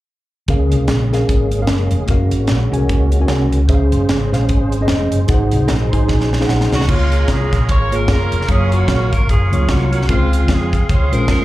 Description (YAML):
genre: uptempo gospel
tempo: 150 BPM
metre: 4/4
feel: swing 60% on 8ths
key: Db major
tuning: A4 = 440 Hz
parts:
  - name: tine electric piano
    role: accompaniment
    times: 0.5-11.4 s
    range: Ab2 to Ab5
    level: -20 LUFS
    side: left 1 dB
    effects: medium stereo tremolo, slapback echo
  - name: tonewheel organ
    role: sustained chords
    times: 0.5-11.4 s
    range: Gb3 to Db6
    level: -24 LUFS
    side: right 2 dB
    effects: slow rotary speaker, chorus vibrato
  - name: hollow-body short-scale fingered electric bass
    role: bass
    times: 0.5-11.4 s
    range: F1 to F2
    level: -16 LUFS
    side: equal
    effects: none
  - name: crisp fusion drum kit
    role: drums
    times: 0.5-11.4 s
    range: crash cymbal, hi-hat, kick drum, snare drum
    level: -18 LUFS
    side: equal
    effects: none
  - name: mellow electric guitar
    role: second line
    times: 5.7-6.7 s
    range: Ab4 to C5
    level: -30 LUFS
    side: right 6 dB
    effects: slapback echo
  - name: bright saxophone section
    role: melody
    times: 6.7-11.4 s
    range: Ab3 to Db5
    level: -22 LUFS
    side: right 1 dB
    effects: slapback echo
room: little or no reverb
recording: live gig heard through the venue's PA, club reverb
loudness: -13 LUFS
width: side -16 dB against mid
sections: 0.5-6.9 A section; 6.9-11.4 B section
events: drum fill 6.1-6.9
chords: 0.5 Db6; 2.1 Gbmaj7; 3.7 Dbmaj7; 5.3 Ab7; 6.9 Db6; 8.5 Gbmaj7; 10.1 Dbmaj7